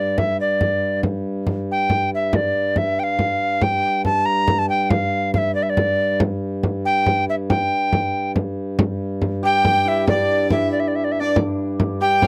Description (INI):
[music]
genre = medieval dance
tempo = 93 BPM (dotted quarters)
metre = 6/8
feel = straight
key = unclear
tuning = A4 = 440 Hz
[part]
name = mellow tenor recorder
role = melody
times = 0.0-12.3 s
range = D5 to Bb5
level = -21 LUFS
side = equal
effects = none
[part]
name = pedal harmonium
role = drone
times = 0.0-12.3 s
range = G2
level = -28 LUFS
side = equal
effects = none
[part]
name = frame drum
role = percussion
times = 0.2-12.3 s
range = none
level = -25 LUFS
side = equal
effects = none
[part]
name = bright fiddle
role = second line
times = 9.4-12.3 s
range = D5 to G5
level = -32 LUFS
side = equal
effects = none
[part]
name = hammered dulcimer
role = second line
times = 9.4-12.3 s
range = D4 to G4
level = -27 LUFS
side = equal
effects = none
[sound]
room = light reverb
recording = dry, close 1970s-style studio recording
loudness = -20 LUFS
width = mono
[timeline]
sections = 0.0-8.8 A section; 8.8-12.3 A section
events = none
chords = none